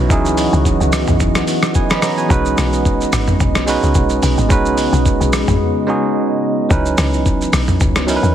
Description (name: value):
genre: amapiano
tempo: 109 BPM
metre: 4/4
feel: swing 55% on 16ths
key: C# minor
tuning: A4 = 437 Hz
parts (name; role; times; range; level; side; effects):
- bell-like tine electric piano; accompaniment; 0.0-8.3 s; F#3 to B5; -18 LUFS; right 4 dB; none
- deep dark ambient pad; sustained chords; 0.0-8.3 s; C#3 to D#5; -20 LUFS; left 1 dB; chorus, built-in reverb
- woody log drum bass; bass; 0.0-8.3 s; G#1 to E2; -18 LUFS; left 1 dB; none
- downlifter; sound effects; 0.0-2.3 s; none; -35 LUFS; left 1 dB; none
- dusty soul sampler-style drum kit; drums; 0.1-8.3 s; hi-hat, kick drum, rim click, shaker, toms; -17 LUFS; equal; overdrive
room: little or no reverb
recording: heavily compressed radio sound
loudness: -13 LUFS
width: side -10 dB against mid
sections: 0.0-8.3 A section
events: break 5.6-6.7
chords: 0.0 C#m11; 2.3 B69; 6.7 C#m11